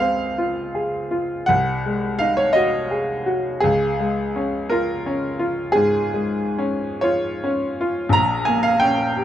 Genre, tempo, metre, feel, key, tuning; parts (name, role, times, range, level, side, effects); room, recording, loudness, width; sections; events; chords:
classical, romantic nocturne for solo piano; 43-60 BPM (dotted quarters); 12/8; rubato; A4 = 437 Hz
clear upright piano; solo; 0.0-9.2 s; Bb1 to Bb5; -18 LUFS; equal
light reverb; dark, warm production; -18 LUFS; side -11 dB against mid
0.0-9.2 A section
0.0 Dbmaj7; 1.5 Ab7/C; 3.6 Db; 8.2 Gdim/Bb